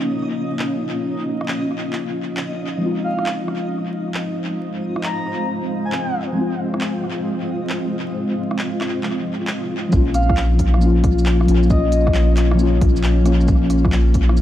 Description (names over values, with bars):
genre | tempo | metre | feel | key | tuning
future garage | 135 BPM | 4/4 | swing 67% on 16ths | Bb minor | A4 = 440 Hz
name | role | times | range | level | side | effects
muted felt-like synth keys | accompaniment | 0.0-14.4 s | F3 to F4 | -22 LUFS | left 2 dB | chorus, sidechain pumping, low-pass filter, tape echo
granular cloud pad | sustained chords | 0.0-14.4 s | Ab3 to F5 | -25 LUFS | equal | built-in reverb, sidechain pumping
backwards swelling texture | texture | 0.0-9.9 s | Eb4 to Eb5 | -34 LUFS | equal | built-in reverb
organic electronic drum kit | drums | 0.6-14.4 s | handclaps, hi-hat, rim click, shaker | -30 LUFS | equal | tape echo
breathy flute-like synth lead | melody | 3.0-6.1, 10.1-12.3 s | Eb5 to Bb5 | -26 LUFS | equal | wide subtle chorus, cassette tape, analog delay
soft dub sub bass | bass | 9.9-14.4 s | Bb1 | -17 LUFS | equal | sidechain pumping
electronic kick drum | drums | 9.9-14.3 s | none | -19 LUFS | equal | overdrive
room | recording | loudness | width
light reverb | echo-heavy mix, vinyl crackle | -17 LUFS | side -12 dB against mid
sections
0.0-9.9 A section; 9.9-14.4 B section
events
filter sweep on ambient pad 0.0-9.9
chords
0.0 Bbm; 2.8 Fm; 9.9 Bbm